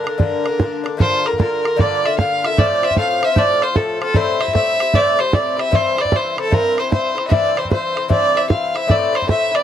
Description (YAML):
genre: celtic folk, Celtic hornpipe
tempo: 152 BPM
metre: 4/4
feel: swing 65% on 8ths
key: G dorian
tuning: A4 = 440 Hz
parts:
  - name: rich fiddle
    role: melody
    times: 0.0-9.6 s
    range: A4 to F5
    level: -17 LUFS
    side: right 1 dB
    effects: none
  - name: Irish bouzouki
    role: accompaniment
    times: 0.0-9.6 s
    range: G2 to F4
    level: -21 LUFS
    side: left 8 dB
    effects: none
  - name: bodhran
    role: percussion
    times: 0.1-9.6 s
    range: none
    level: -18 LUFS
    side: right 2 dB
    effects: none
room: light reverb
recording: dry, close 1970s-style studio recording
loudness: -15 LUFS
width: side -10 dB against mid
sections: 1.0-9.6 A section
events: none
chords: 0.0 Gm; 1.0 Gm7; 2.6 F; 4.1 Am7; 5.7 C; 8.9 Am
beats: 0.20 0.60 | 0.99 1.39 1.78 2.17 | 2.57 2.96 3.36 3.75 | 4.15 4.54 4.94 5.33 | 5.73 6.12 6.51 6.91 | 7.30 7.70 8.09 8.49 | 8.88 9.28